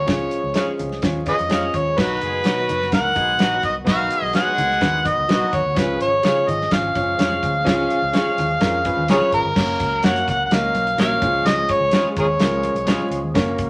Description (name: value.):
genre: uptempo 1960s-style soul.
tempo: 127 BPM.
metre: 4/4.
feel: straight.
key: unclear.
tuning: A4 = 438 Hz.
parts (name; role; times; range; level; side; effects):
overdriven harmonica; melody; 0.0-13.1 s; G#4 to F#5; -22 LUFS; equal; none.
tonewheel organ; sustained chords; 0.0-13.7 s; D#3 to A#4; -35 LUFS; equal; none.
vintage muted fingered electric bass; bass; 0.0-13.7 s; E#1 to C#3; -31 LUFS; equal; none.
clear grand piano; accompaniment; 0.1-13.7 s; G#3 to D#5; -28 LUFS; equal; none.
warm soul drum kit; drums; 0.1-13.7 s; crash cymbal, hi-hat, kick drum, snare drum; -24 LUFS; equal; none.
congas; percussion; 0.1-13.7 s; none; -36 LUFS; equal; none.
clean electric guitar; stabs; 0.6-13.0 s; E#4 to E#5; -31 LUFS; equal; none.
clear horn section; second line; 2.0-5.6 s; F#3 to A#4; -30 LUFS; equal; none.
room: moderate studio reverb, RT60 0.6 s.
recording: vinyl crackle.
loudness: -19 LUFS.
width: mono.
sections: 0.0-2.0 A section; 2.0-9.6 B section; 9.6-13.7 C section.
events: none.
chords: 0.1 C#; 2.0 B; 5.8 C#; 9.6 F#; 11.2 C#.